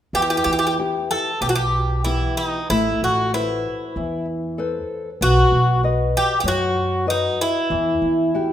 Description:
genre	fado-style ballad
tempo	95 BPM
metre	4/4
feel	rubato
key	E harmonic minor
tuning	A4 = 440 Hz
part	Greek bouzouki	melody	0.1-8.5 s	D#4 to A4	-20 LUFS	equal	none
part	nylon-string guitar	accompaniment	0.1-8.5 s	B2 to D#5	-24 LUFS	left 2 dB	none
part	upright bass	bass	0.1-8.5 s	A1 to F#2	-24 LUFS	right 1 dB	none
room	wet recital hall reverb, RT60 1.8 s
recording	minimal, uncompressed stereo recording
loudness	-18 LUFS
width	side -10 dB against mid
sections	0.1-8.5 A section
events	none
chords	0.1 Em; 2.7 Amadd9; 5.2 B; 7.7 Emadd9

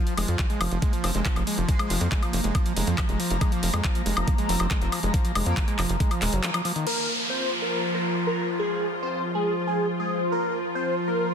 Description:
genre	psychedelic trance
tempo	139 BPM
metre	4/4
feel	straight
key	F minor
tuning	A4 = 440 Hz
part	evolving wavetable pad	sustained chords	0.0-11.3 s	F3 to F4	-30 LUFS	right 1 dB	ensemble chorus, built-in reverb, sidechain pumping
part	overdriven acid bass	riff	0.0-6.9 s	Eb3 to Ab3	-30 LUFS	moving between left 5 dB and right 5 dB	distortion, auto-pan, sidechain pumping, dub echo
part	airy breathy pad	texture	0.1-11.3 s	F4 to C6	-34 LUFS	left 2 dB	chorus, phaser, sidechain pumping
part	drum and bass drum kit	drums	0.1-7.0 s	crash cymbal, handclaps, hi-hat, woodblock	-30 LUFS	left 1 dB	overdrive, studio reverb
part	tight sequencer bass	bass	0.2-6.4 s	Eb1 to F2	-26 LUFS	equal	none
part	electronic kick drum	drums	0.4-6.1 s	none	-24 LUFS	equal	overdrive, studio reverb
part	metallic wobble bass	second line	1.0-5.8 s	Ab3 to C4	-40 LUFS	right 4 dB	lush chorus, sidechain pumping, high-pass filter, tape echo
part	wide unison lead	melody	6.9-11.3 s	Ab4 to C5	-27 LUFS	equal	phaser, sidechain pumping, dub echo
part	downlifter	sound effects	6.9-10.3 s	none	-31 LUFS	equal	none
room	light reverb, digital ambience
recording	dense, heavily limited modern master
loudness	-23 LUFS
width	side -7 dB against mid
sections	0.0-6.9 A section; 6.9-11.3 B section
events	band accent 6.4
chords	0.0 F5

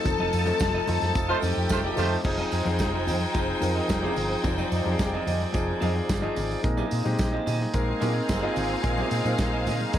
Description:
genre	disco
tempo	109 BPM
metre	4/4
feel	straight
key	unclear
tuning	A4 = 444 Hz
part	rich studio string section	second line	0.0-10.0 s	C4 to A5	-30 LUFS	left 2 dB	none
part	warm grand piano	accompaniment	0.0-10.0 s	F3 to Bb4	-31 LUFS	left 4 dB	none
part	bright tonewheel organ	sustained chords	0.0-10.0 s	F3 to D5	-32 LUFS	right 3 dB	lush chorus
part	electric guitar at the edge of break-up	accompaniment	0.1-10.0 s	C4 to Eb5	-35 LUFS	right 4 dB	tube saturation, lush chorus
part	hollow-body short-scale fingered electric bass	bass	0.1-10.0 s	F1 to Bb2	-29 LUFS	right 1 dB	none
part	warm soul drum kit	drums	0.1-10.0 s	crash cymbal, hi-hat, kick drum, snare drum	-30 LUFS	right 1 dB	none
part	congas	percussion	0.1-9.9 s	none	-38 LUFS	left 2 dB	none
part	tambourine	percussion	0.1-10.0 s	none	-46 LUFS	right 14 dB	none
part	warm horn section	stabs	1.3-2.2 s	A3 to C5	-28 LUFS	right 3 dB	none
room	light reverb, small room reverb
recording	none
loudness	-23 LUFS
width	side -11 dB against mid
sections	0.0-2.2 A section; 2.2-10.0 B section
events	band accent 0.1-2.2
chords	0.0 F7; 2.2 Fm7; 6.6 Bb9sus4

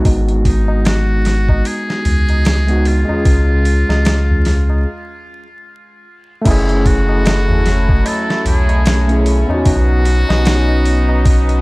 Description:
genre	trip hop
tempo	75 BPM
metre	4/4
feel	swing 58% on 16ths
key	F# dorian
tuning	A4 = 440 Hz
part	overdriven tine electric piano	accompaniment	0.0-11.6 s	G#3 to G#4	-19 LUFS	equal	tremolo
part	warm sub bass	bass	0.0-11.6 s	F#1 to C#2	-14 LUFS	equal	tube saturation
part	boom bap sampler-style drum kit	drums	0.1-11.6 s	crash cymbal, hi-hat, kick drum, snare drum	-17 LUFS	equal	small room ambience
part	tabla	percussion	0.1-11.6 s	none	-25 LUFS	equal	none
part	trumpet with metal mute	melody	0.5-11.6 s	D#4 to A4	-23 LUFS	equal	tape echo
part	warm chamber string section	sustained chords	6.5-11.6 s	F#3 to E4	-21 LUFS	left 1 dB	none
room	studio reverb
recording	dark, warm production, vinyl crackle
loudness	-12 LUFS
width	side -24 dB against mid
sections	0.0-6.5 A section; 6.5-11.6 B section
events	filter sweep on tine electric piano 0.0-6.5; break 4.9-6.5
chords	0.1 G#m7; 3.3 C#; 6.5 F#m7; 9.7 Badd9

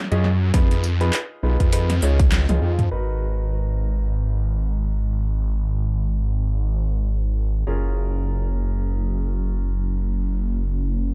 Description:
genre	glitch hop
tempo	101 BPM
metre	4/4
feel	swing 58% on 16ths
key	G# dorian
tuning	A4 = 439 Hz
part	dubstep drum kit	drums	0.0-2.9 s	handclaps, hi-hat, snare drum, tambourine, toms	-27 LUFS	equal	overdrive
part	warm grand piano	stabs	0.1-11.1 s	C#4 to D#5	-33 LUFS	equal	sidechain pumping, digital delay
part	phased detuned saw bass	bass	0.1-11.1 s	F#1 to F#2	-23 LUFS	equal	phaser
part	electronic kick drum	drums	0.5-2.3 s	none	-20 LUFS	equal	overdrive
room	little or no reverb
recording	dark, warm production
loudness	-22 LUFS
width	mono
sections	0.0-2.9 A section; 2.9-11.1 B section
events	drop 0.0-2.9; drum fill 2.3-2.9; band accent 2.3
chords	0.0 F#maj7(no3); 0.5 C#7; 2.9 G#m7; 7.7 F#maj7

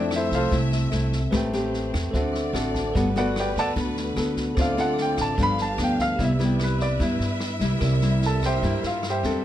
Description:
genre	bossa nova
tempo	148 BPM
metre	4/4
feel	straight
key	G major, C major from 6.2 s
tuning	A4 = 440 Hz
part	warm grand piano	melody	0.0-0.5, 3.2-9.4 s	D4 to B5	-26 LUFS	equal	none
part	bell-like tine electric piano	accompaniment	0.0-9.4 s	G4 to A5	-34 LUFS	right 2 dB	none
part	nylon-string guitar	accompaniment	0.0-9.4 s	G2 to B4	-26 LUFS	left 2 dB	none
part	warm symphonic string section	sustained chords	0.0-9.4 s	A3 to F5	-34 LUFS	equal	none
part	upright bass	bass	0.0-9.4 s	G1 to G2	-27 LUFS	right 1 dB	none
part	open jazz drum kit	drums	0.1-9.3 s	kick drum, rim click, snare drum	-31 LUFS	equal	none
room	moderate studio ambience, RT60 0.5 s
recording	none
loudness	-21 LUFS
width	side -12 dB against mid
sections	0.0-6.2 A section; 6.2-9.4 A section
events	grand piano solo 0.0-9.4; tine electric piano fill 2.1-3.0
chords	0.0 Fmaj7; 1.3 Am9; 2.1 D7; 3.0 Gmaj9; 4.6 Dm7; 5.4 G7; 6.2 Cmaj7; 7.8 C7

